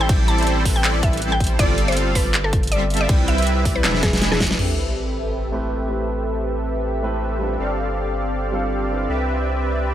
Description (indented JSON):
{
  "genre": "future bass",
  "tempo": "160 BPM",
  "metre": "4/4",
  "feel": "swing 55% on 16ths, half-time",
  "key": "A minor",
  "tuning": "A4 = 440 Hz",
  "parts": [
    { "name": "mallet-like synth pluck", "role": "melody", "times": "0.0-4.5 s", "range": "G#4 to A5", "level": "-25 LUFS", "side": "left 1 dB", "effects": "chorus, sidechain pumping, tape echo" },
    { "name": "soft supersaw", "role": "riff", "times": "0.0-9.9 s", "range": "G3 to G#5", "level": "-23 LUFS", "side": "equal", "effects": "analog chorus, sidechain pumping, low-pass filter" },
    { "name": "saturated sub bass", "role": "bass", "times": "0.0-9.9 s", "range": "E1 to C2", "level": "-24 LUFS", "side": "equal", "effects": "sidechain pumping" },
    { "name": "dubstep drum kit", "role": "drums", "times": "0.1-4.7 s", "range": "crash cymbal, handclaps, hi-hat, snare drum", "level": "-24 LUFS", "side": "equal", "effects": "none" },
    { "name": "electronic kick drum", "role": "drums", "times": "0.1-4.5 s", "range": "none", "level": "-20 LUFS", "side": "equal", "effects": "none" },
    { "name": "sub drop and swell", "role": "sound effects", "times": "4.6-6.1, 9.8-9.9 s", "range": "none", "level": "-28 LUFS", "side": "equal", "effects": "none" },
    { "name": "dark baby grand piano", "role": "accompaniment", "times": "5.5-9.9 s", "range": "G3 to B4", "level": "-29 LUFS", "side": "right 2 dB", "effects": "sidechain pumping, tape echo" }
  ],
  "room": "light reverb, digital ambience",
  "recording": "none",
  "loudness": "-18 LUFS",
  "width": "side -11 dB against mid",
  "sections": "0.0-4.6 A section; 4.6-9.9 B section",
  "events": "drop 0.0-4.6; drum fill 3.8-4.6; band accent 4.5; impact 4.6-6.1; filter sweep on supersaw synth 4.6-9.9",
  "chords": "0.0 Am9; 1.6 G9sus4; 3.1 Cmaj9; 3.8 E7; 4.6 Am9; 7.6 G9sus4; 9.1 Cmaj9"
}